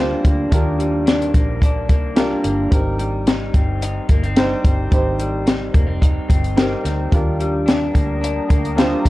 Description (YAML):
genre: indie pop, bedroom pop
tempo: 109 BPM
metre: 4/4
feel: straight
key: unclear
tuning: A4 = 435 Hz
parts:
  - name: electric guitar through a small old amp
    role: accompaniment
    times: 0.0-9.1 s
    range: Eb3 to Eb4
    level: -25 LUFS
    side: left 2 dB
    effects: lush chorus, warbly pitch drift
  - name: warm upright piano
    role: accompaniment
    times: 0.0-9.1 s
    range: C4 to C5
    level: -23 LUFS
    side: right 1 dB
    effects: cassette tape
  - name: vintage muted fingered electric bass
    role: bass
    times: 0.0-9.1 s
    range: F1 to Eb2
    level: -23 LUFS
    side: equal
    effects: none
  - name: compact cocktail drum kit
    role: drums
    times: 0.2-9.1 s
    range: hi-hat, kick drum, snare drum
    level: -16 LUFS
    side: equal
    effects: none
  - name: warm analog pad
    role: sustained chords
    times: 7.1-9.1 s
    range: D4 to Eb6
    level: -30 LUFS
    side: right 1 dB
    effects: chorus
room: small room ambience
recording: dry, gritty hardware recording, cassette tape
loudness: -15 LUFS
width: side -18 dB against mid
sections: 0.0-9.1 A section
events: none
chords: 0.0 Abmaj7; 7.1 Ebmaj7